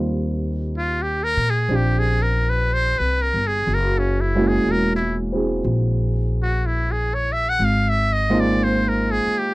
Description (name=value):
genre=jazz ballad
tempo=61 BPM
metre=4/4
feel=swing 69% on 8ths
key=Eb major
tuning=A4 = 440 Hz
part: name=dark grand piano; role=accompaniment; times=0.0-9.5 s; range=G3 to Ab4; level=-24 LUFS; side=right 1 dB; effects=none
part: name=upright bass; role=bass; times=0.0-9.3 s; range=Fb1 to Bb2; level=-22 LUFS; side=equal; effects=none
part: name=trumpet with metal mute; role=melody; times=0.8-9.5 s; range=Db4 to Gb5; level=-22 LUFS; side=equal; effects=none
room=light reverb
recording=dry, close 1970s-style studio recording, faint mains hum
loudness=-18 LUFS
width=side -20 dB against mid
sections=0.0-9.5 A section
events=muted trumpet solo 0.0-9.5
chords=0.0 Eb69; 3.7 Gb9; 7.6 Ab69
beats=0.69 1.68 2.67 | 3.65 4.64 5.62 6.61 | 7.59 8.58